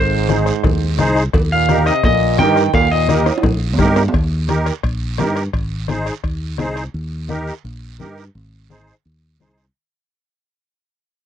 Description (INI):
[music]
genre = latin, cumbia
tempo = 171 BPM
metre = 4/4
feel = straight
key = Eb major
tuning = A4 = 444 Hz
[part]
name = clean electric guitar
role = melody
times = 0.0-3.2 s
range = C5 to G5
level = -18 LUFS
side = left 1 dB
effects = spring reverb
[part]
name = brilliant trombone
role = second line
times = 0.0-3.2 s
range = Ab2 to Eb3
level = -22 LUFS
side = right 16 dB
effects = none
[part]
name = fingered electric bass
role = bass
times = 0.0-9.7 s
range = Ab1 to G2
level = -20 LUFS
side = equal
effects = none
[part]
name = musette accordion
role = accompaniment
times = 0.3-9.7 s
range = Eb4 to C5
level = -19 LUFS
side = right 1 dB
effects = none
[part]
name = bombo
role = percussion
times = 0.3-6.9 s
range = none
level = -21 LUFS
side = left 1 dB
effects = none
[part]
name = congas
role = percussion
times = 0.3-9.6 s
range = none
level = -23 LUFS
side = left 5 dB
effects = none
[part]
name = guiro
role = percussion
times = 0.3-9.8 s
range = none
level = -34 LUFS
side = right 14 dB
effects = none
[part]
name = cowbell and timbales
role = percussion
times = 0.6-6.9 s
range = none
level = -24 LUFS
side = right 5 dB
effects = none
[sound]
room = little or no reverb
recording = dry, close 1970s-style studio recording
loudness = -14 LUFS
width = side -10 dB against mid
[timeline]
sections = 0.0-4.1 A section; 4.1-9.8 B section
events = drum fill 3.3-4.1; fade-out 4.1-9.8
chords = 0.0 Ab; 1.3 Eb; 5.5 Ab; 6.9 Eb; 8.3 Ab